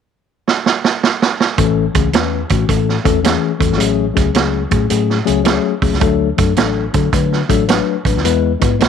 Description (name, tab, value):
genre	uptempo 1960s-style soul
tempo	108 BPM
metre	4/4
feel	swing 66% on 8ths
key	A major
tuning	A4 = 439 Hz
part	vintage drum kit	drums	0.5-8.9 s	hi-hat, kick drum, snare drum	-16 LUFS	right 5 dB	none
part	mellow tine electric piano	accompaniment	1.6-8.9 s	E3 to B4	-16 LUFS	left 12 dB	slow stereo tremolo
part	vintage muted fingered electric bass	bass	1.6-8.9 s	G#1 to D3	-19 LUFS	right 1 dB	tube saturation
room	light reverb, small room ambience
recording	1960s-style stereo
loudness	-13 LUFS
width	side -7 dB against mid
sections	0.0-1.6 A section; 1.6-8.9 B section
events	drum fill 0.5-1.6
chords	0.0 N.C.; 1.6 A; 3.8 F#madd9/A; 6.0 D; 8.2 E